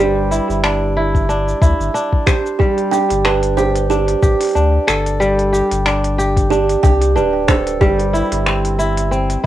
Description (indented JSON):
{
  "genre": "folktronica",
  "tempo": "92 BPM",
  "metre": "4/4",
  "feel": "swing 56% on 16ths",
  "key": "unclear",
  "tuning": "A4 = 440 Hz",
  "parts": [
    { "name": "kalimba", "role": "second line", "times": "0.0-8.1 s", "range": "G4 to G5", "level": "-19 LUFS", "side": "right 7 dB", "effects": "tape echo" },
    { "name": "kora", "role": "arpeggios", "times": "0.0-9.5 s", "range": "G3 to C5", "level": "-17 LUFS", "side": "equal", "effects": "tape echo" },
    { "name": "warm sub bass", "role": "bass", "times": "0.0-9.5 s", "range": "D1 to D2", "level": "-19 LUFS", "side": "left 1 dB", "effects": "none" },
    { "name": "organic electronic drum kit", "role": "drums", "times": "0.3-9.4 s", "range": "finger snaps, hi-hat, shaker", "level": "-22 LUFS", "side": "left 1 dB", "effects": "cassette tape" },
    { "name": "electronic kick drum", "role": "drums", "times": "1.1-8.0 s", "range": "none", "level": "-14 LUFS", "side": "left 1 dB", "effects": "cassette tape" }
  ],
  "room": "moderate studio reverb, RT60 0.5 s",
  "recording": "home recording on cassette",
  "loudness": "-13 LUFS",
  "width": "side -13 dB against mid",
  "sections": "0.0-9.5 A section",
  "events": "none",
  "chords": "0.0 Cadd9/G; 2.6 Gsus2; 7.8 Am/G"
}